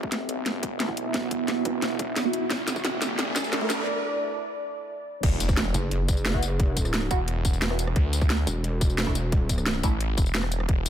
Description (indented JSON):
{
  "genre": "dark technical drum and bass",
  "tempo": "176 BPM",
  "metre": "4/4",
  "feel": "straight",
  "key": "unclear",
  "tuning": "A4 = 436 Hz",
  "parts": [
    { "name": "deep dark ambient pad", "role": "sustained chords", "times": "0.0-5.2 s", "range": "A3 to E5", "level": "-31 LUFS", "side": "right 2 dB", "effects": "chorus, built-in reverb, sidechain pumping" },
    { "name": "snarling distorted saw bass", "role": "bass", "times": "0.0-10.9 s", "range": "E1 to D2", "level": "-29 LUFS", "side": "equal", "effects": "distortion, tube saturation, high-pass filter" },
    { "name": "electronic kick drum", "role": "drums", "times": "0.0-10.8 s", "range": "none", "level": "-25 LUFS", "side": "equal", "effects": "overdrive, high-pass filter on kick" },
    { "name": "riser and impact", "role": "sound effects", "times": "0.0-6.6 s", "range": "none", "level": "-34 LUFS", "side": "equal", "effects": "none" },
    { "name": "drum and bass drum kit", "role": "drums", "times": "0.1-10.9 s", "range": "crash cymbal, hi-hat, rim click, snare drum, tambourine", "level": "-29 LUFS", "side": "equal", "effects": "overdrive" },
    { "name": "band-passed chord stab", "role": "stabs", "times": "0.9-3.7, 6.3-9.9 s", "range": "A3 to F#4", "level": "-34 LUFS", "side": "right 2 dB", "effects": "phaser, lush chorus, analog delay" },
    { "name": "pulsing pluck wobble bass", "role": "bass", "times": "5.7-9.8 s", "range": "E1 to F#1", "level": "-26 LUFS", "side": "equal", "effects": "chorus" }
  ],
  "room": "light reverb",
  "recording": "high-pass filter",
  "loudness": "-23 LUFS",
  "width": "side -10 dB against mid",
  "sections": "0.0-5.2 A section; 5.2-10.9 B section",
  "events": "build-up 0.0-5.2; drum fill 0.0-3.9; riser 0.0-3.9; filter sweep on synth stab 0.0-5.2; filter sweep 0.0-5.2; break 3.9-5.2; drop 5.2-10.9; impact 5.2-6.6",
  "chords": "0.0 Esus2; 2.5 Dsus2; 5.2 Esus2; 8.0 Dsus2",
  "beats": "0.12 0.46 0.80 | 1.14 1.48 1.82 2.16 | 2.50 2.85 3.19 3.53 | 3.87 4.21 4.55 4.89 | 5.23 5.57 5.91 6.25 | 6.60 6.94 7.28 7.62 | 7.96 8.30 8.64 8.98 | 9.32 9.66 10.01 10.35 | 10.69"
}